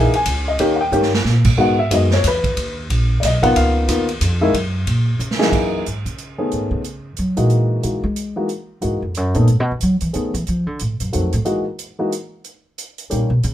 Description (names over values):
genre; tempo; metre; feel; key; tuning
jazz piano trio; 182 BPM; 3/4; swing 61% on 8ths; F# mixolydian; A4 = 440 Hz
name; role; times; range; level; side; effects
warm upright piano; melody; 0.0-13.3 s; F#2 to G#5; -18 LUFS; left 1 dB; none
upright bass; bass; 0.0-13.5 s; A#1 to G#3; -18 LUFS; equal; none
swinging big-band drum kit; drums; 0.1-13.5 s; crash cymbal, hi-hat, kick drum, ride cymbal, snare drum; -24 LUFS; right 2 dB; none
room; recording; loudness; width
light reverb; minimal, uncompressed stereo recording; -16 LUFS; side -12 dB against mid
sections
0.0-5.5 A section; 5.5-13.5 A section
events
upright piano solo 0.0-5.5; drum fill 0.9-1.2, 5.2-5.5; upright bass solo 5.5-13.5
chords
0.0 F#13 (rootless); 0.6 D#7; 1.6 G#m7; 3.5 C#13; 4.5 F#; 5.2 C#sus2; 5.5 F#13; 6.5 B13; 7.5 F#13; 9.5 B6; 10.5 Cdim7(no3) (rootless); 11.5 F#13; 12.4 D# (rootless)